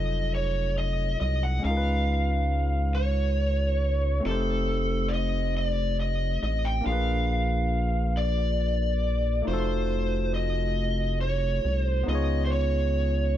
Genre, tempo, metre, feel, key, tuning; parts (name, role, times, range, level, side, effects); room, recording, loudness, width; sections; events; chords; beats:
slow six-eight R&B; 46 BPM (dotted quarters); 6/8; straight; A4 = 440 Hz
lead guitar through a small cranked amp; melody; 0.0-13.4 s; A4 to G5; -29 LUFS; equal; overdrive
barky tine electric piano; accompaniment; 0.0-13.4 s; C3 to Db5; -32 LUFS; left 2 dB; wide subtle chorus
rubbery square bass; bass; 0.0-13.4 s; F1 to Db2; -26 LUFS; equal
digital ambience; -24 LUFS; side -11 dB against mid
0.0-13.4 A section
0.0 F7b9; 1.6 Db7; 4.2 F9; 6.9 Bb7b9; 9.5 F7b9; 12.1 Db7
0.33 | 1.64 2.94 | 4.25 5.55 | 6.85 8.16 | 9.46 10.77 | 12.07